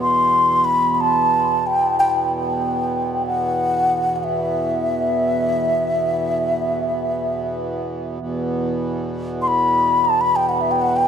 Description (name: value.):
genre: world meditative, free-time meditation music.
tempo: free time.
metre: none.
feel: none.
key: E minor.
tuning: A4 = 437 Hz.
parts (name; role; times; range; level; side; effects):
breathy bright low xiao; melody; 0.0-11.1 s; E5 to C6; -18 LUFS; left 1 dB; none.
hand-pumped harmonium; drone; 0.0-11.1 s; E2 to B2; -24 LUFS; right 2 dB; none.
room: wet cathedral reverb, RT60 5.6 s.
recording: dark, warm production.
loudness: -17 LUFS.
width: side -8 dB against mid.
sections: 0.0-8.2 A section; 8.2-11.1 A section.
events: none.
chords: none.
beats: free time.